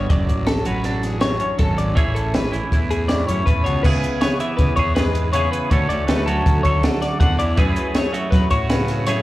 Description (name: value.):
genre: math rock and midwest emo.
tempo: 161 BPM.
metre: 5/4.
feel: straight.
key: unclear.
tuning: A4 = 441 Hz.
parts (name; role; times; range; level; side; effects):
twelve-string electric guitar; accompaniment; 0.0-9.2 s; F#2 to A4; -23 LUFS; right 3 dB; spring reverb, slapback echo.
twelve-string electric guitar; arpeggios; 0.0-9.2 s; G#4 to F#5; -24 LUFS; left 4 dB; wide subtle chorus, slapback echo.
fuzz fingered electric bass; bass; 0.0-9.2 s; F#1 to F#3; -22 LUFS; equal; overdrive.
compact cocktail drum kit; drums; 0.1-9.2 s; crash cymbal, hi-hat, kick drum, snare drum; -20 LUFS; equal; none.
room: light reverb.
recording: live gig heard through the venue's PA, club reverb.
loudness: -16 LUFS.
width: side -16 dB against mid.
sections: 0.0-3.8 A section; 3.8-9.2 B section.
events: none.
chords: 0.1 Dmaj7/F#; 2.0 Amaj9; 3.8 C#m7; 5.7 Bm11/D (rootless); 7.6 F#m9.